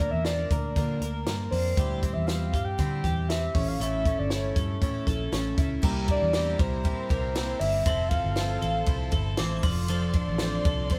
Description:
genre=jangly indie pop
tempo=118 BPM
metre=4/4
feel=straight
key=unclear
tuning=A4 = 438 Hz
part: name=soft octave-layered synth lead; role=melody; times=0.0-11.0 s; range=C5 to G5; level=-33 LUFS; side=equal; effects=chorus
part: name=picked twelve-string acoustic guitar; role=accompaniment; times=0.0-11.0 s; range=A2 to Bb4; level=-40 LUFS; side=equal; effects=none
part: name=twelve-string electric guitar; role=arpeggios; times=0.0-11.0 s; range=F3 to Bb4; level=-36 LUFS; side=equal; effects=none
part: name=vintage muted fingered electric bass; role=bass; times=0.0-11.0 s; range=F1 to D3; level=-32 LUFS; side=equal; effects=none
part: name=compact cocktail drum kit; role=drums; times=0.0-11.0 s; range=crash cymbal, hi-hat, kick drum, ride cymbal, snare drum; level=-31 LUFS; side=equal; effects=none
part: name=glockenspiel with brass mallets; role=second line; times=5.8-11.0 s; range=Bb5 to D6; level=-43 LUFS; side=equal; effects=none
part: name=warm studio string section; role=sustained chords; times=5.8-11.0 s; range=F3 to C6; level=-46 LUFS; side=equal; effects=none
room=moderate stone room reverb, RT60 1.3 s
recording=band playing live in one room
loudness=-27 LUFS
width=mono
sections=0.0-5.8 A section; 5.8-11.0 B section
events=none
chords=0.0 Bb/D; 1.8 C/D; 3.6 A; 5.8 C7; 7.9 Fmaj7; 9.6 Dm7/F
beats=0.26 0.77 1.27 | 1.78 2.29 2.79 3.30 | 3.80 4.31 4.82 5.32 | 5.83 6.34 6.84 7.35 | 7.86 8.37 8.88 9.38 | 9.89 10.40 10.91

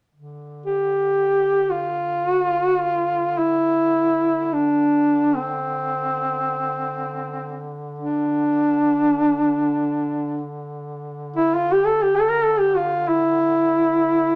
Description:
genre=caucasian folk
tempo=free time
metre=none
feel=none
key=D minor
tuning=A4 = 440 Hz
part: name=dark duduk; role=drone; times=0.1-14.4 s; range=D3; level=-36 LUFS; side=equal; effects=none
part: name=mellow duduk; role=melody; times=0.7-14.4 s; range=C4 to Bb4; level=-20 LUFS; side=equal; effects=none
room=moderate studio reverb, RT60 0.9 s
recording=none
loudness=-21 LUFS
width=mono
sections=0.2-14.4 A section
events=none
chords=none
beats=free time

